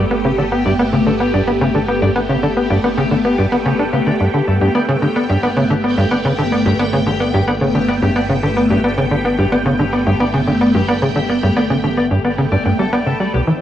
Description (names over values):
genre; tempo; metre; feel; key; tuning
ambient, sequencer-driven space music; 110 BPM; 4/4; straight; G lydian; A4 = 440 Hz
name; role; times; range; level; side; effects
phased string machine; sustained chords; 0.0-13.6 s; E3 to G5; -19 LUFS; equal; ensemble chorus, phaser, shimmer reverb
clean electric guitar; arpeggios; 0.0-13.4 s; G4 to G5; -25 LUFS; left 4 dB; auto-pan, ping-pong delay, shimmer reverb
tight sequencer bass; riff; 0.0-13.5 s; C2 to D4; -15 LUFS; equal; lush chorus, ping-pong delay, shimmer reverb
analog drone; bass; 0.0-13.3 s; G1; -28 LUFS; right 1 dB; chorus
bubbling stepped-filter texture; texture; 0.0-13.6 s; G5 to A5; -31 LUFS; right 5 dB; chorus, built-in reverb, shimmer reverb
room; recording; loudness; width
wet studio reverb, RT60 0.6 s; home recording on cassette; -13 LUFS; side -11 dB against mid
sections
0.0-13.3 A section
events
none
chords
0.0 Gadd9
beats
| 0.25 0.79 1.34 1.88 | 2.43 2.98 3.52 4.07 | 4.61 5.16 5.70 6.25 | 6.79 7.34 7.88 8.43 | 8.97 9.52 10.07 10.61 | 11.16 11.70 12.25 12.79 | 13.34